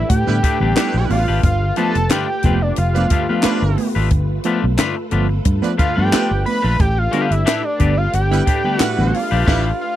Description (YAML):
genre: funk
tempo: 90 BPM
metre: 4/4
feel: straight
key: unclear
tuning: A4 = 440 Hz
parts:
  - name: fat analog lead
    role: melody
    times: 0.0-10.0 s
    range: D5 to B5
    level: -21 LUFS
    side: equal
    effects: none
  - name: soft string machine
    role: sustained chords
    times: 0.0-10.0 s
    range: A3 to B4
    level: -28 LUFS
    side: equal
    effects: ensemble chorus
  - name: vintage muted fingered electric bass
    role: bass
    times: 0.0-9.7 s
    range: F1 to A2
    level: -18 LUFS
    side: equal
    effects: none
  - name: twangy electric guitar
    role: accompaniment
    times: 0.1-9.7 s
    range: A3 to B4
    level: -23 LUFS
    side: left 7 dB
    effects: none
  - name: compact cocktail drum kit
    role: drums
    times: 0.1-9.7 s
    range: crash cymbal, handclaps, hi-hat, kick drum, snare drum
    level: -18 LUFS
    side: equal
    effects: none
  - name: clear horn section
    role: second line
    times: 0.3-9.6 s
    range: F3 to B4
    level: -24 LUFS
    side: right 8 dB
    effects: none
  - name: tine electric piano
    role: stabs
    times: 0.3-9.2 s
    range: G2 to B3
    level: -22 LUFS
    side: right 1 dB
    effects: medium stereo tremolo
room: little or no reverb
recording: dry, close 1970s-style studio recording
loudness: -15 LUFS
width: side -12 dB against mid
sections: 0.0-10.0 A section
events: band accent 9.5-10.0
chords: 0.0 A9sus4; 1.4 G9; 6.8 A9sus4